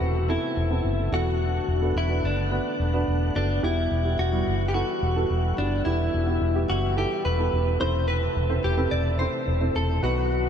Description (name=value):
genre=piano-driven pop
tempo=108 BPM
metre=4/4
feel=straight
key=E minor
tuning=A4 = 440 Hz
part: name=direct-recorded clean electric guitar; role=melody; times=0.0-10.5 s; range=D4 to D5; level=-27 LUFS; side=left 2 dB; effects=lush chorus, tape echo
part: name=warm upright piano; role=accompaniment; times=0.0-10.5 s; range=B2 to C5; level=-30 LUFS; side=right 4 dB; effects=none
part: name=tonewheel organ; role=sustained chords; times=0.0-10.5 s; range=C3 to F#5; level=-34 LUFS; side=left 2 dB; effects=chorus vibrato, wide subtle chorus
part: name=vintage muted fingered electric bass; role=bass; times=0.0-10.5 s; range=E1 to B1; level=-25 LUFS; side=equal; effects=none
room=moderate cathedral reverb, RT60 6.4 s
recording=dreamy mix soaked in reverb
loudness=-22 LUFS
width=side -8 dB against mid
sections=0.0-10.5 A section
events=none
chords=0.0 Amadd9/E; 1.1 Bm7/E; 3.6 Emadd9; 7.8 Amadd9/E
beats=0.29 0.85 | 1.41 1.96 2.52 3.08 | 3.63 4.19 4.75 5.30 | 5.86 6.41 6.97 7.53 | 8.08 8.64 9.20 9.75 | 10.31